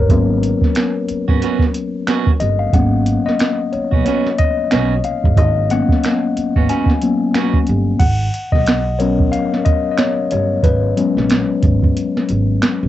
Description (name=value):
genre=R&B, neo-soul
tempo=91 BPM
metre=4/4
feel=swing 59% on 16ths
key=G# minor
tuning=A4 = 440 Hz
part: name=mellow tine electric piano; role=accompaniment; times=0.0-12.9 s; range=F#3 to G#5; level=-17 LUFS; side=left 4 dB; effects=medium stereo tremolo, cassette tape
part: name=upright bass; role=bass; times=0.0-12.9 s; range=G1 to G#2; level=-19 LUFS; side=right 2 dB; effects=none
part: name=soft vintage rhythm box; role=drums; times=0.1-12.8 s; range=crash cymbal, finger snaps, hi-hat, kick drum, snare drum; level=-16 LUFS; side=right 2 dB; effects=cassette tape
part: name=clean electric guitar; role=second line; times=1.3-7.6 s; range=B3 to F#4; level=-20 LUFS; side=right 8 dB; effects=cassette tape
room=moderate small room ambience, RT60 0.5 s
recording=home recording on cassette, nothing above 8.0 kHz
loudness=-14 LUFS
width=side -13 dB against mid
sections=0.0-8.0 A section; 8.0-12.9 B section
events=tine electric piano solo 0.0-8.0, 8.0-12.9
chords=0.0 G#m11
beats=| 0.09 0.75 1.41 2.07 | 2.73 3.38 4.04 4.70 | 5.36 6.02 6.68 7.34 | 8.00 8.66 9.32 9.98 | 10.64 11.30 11.96 12.62